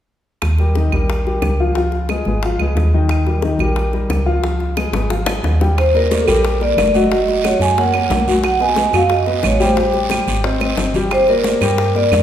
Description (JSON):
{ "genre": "Afro-Cuban jazz", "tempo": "180 BPM", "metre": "4/4", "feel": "straight", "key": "unclear", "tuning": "A4 = 441 Hz", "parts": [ { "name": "woody FM bass", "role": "bass", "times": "0.4-12.2 s", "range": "Gb1 to G2", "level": "-18 LUFS", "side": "equal", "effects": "none" }, { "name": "bongos", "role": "percussion", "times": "0.4-12.2 s", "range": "none", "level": "-26 LUFS", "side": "left 3 dB", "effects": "none" }, { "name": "claves", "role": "percussion", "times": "0.4-12.2 s", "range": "none", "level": "-28 LUFS", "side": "right 6 dB", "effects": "none" }, { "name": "warm grand piano", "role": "accompaniment", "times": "0.6-12.2 s", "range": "Eb3 to G5", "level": "-19 LUFS", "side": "left 2 dB", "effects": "none" }, { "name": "vibraphone with medium mallets", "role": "melody", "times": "5.8-12.2 s", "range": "A4 to Ab5", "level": "-16 LUFS", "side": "right 2 dB", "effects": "none" }, { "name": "congas", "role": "percussion", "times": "5.8-12.2 s", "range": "none", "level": "-24 LUFS", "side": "equal", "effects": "none" }, { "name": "guiro", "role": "percussion", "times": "5.8-12.2 s", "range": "none", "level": "-28 LUFS", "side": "right 5 dB", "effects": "none" } ], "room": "wet recital hall reverb, RT60 1.9 s", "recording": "recorded in a church or concert hall", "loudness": "-14 LUFS", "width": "side -10 dB against mid", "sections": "0.4-5.8 A section; 5.8-12.2 B section", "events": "drum fill 4.9-5.8, 10.6-11.1", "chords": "0.4 Eb; 1.8 Db7; 3.1 Eb; 4.4 Db7; 5.8 Ebmaj7; 7.1 Gb6; 8.4 B6; 9.8 Abmaj7; 10.4 Ab; 11.1 Gm", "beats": "| 0.42 0.76 1.09 1.43 | 1.76 2.10 2.43 2.77 | 3.10 3.44 3.77 4.11 | 4.44 4.77 5.11 5.44 | 5.77 6.11 6.44 6.78 | 7.11 7.44 7.78 8.11 | 8.44 8.78 9.11 9.44 | 9.78 10.11 10.45 10.78 | 11.11 11.45 11.78 12.12" }